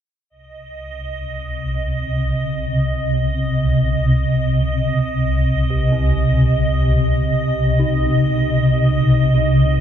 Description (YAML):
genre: dark ambient drone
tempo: free time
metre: none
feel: none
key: C minor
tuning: A4 = 440 Hz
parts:
  - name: swarming drone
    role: drone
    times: 1.0-9.8 s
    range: C2 to C3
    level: -16 LUFS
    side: equal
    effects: built-in reverb
  - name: icy glass pad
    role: texture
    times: 0.5-9.8 s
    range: Eb5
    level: -24 LUFS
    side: right 2 dB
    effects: chorus, built-in reverb
  - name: dark detuned synth bell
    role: arpeggios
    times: 5.7-9.8 s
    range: C4 to G4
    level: -28 LUFS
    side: left 2 dB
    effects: chorus, phaser, tape echo
room: wet huge ambient reverb, RT60 9.3 s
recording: dark, warm production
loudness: -15 LUFS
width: side -9 dB against mid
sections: 0.3-9.8 A section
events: fade-in on synth bell 0.3-9.8; filter sweep on synth drone 0.3-9.8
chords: 0.3 Cm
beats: free time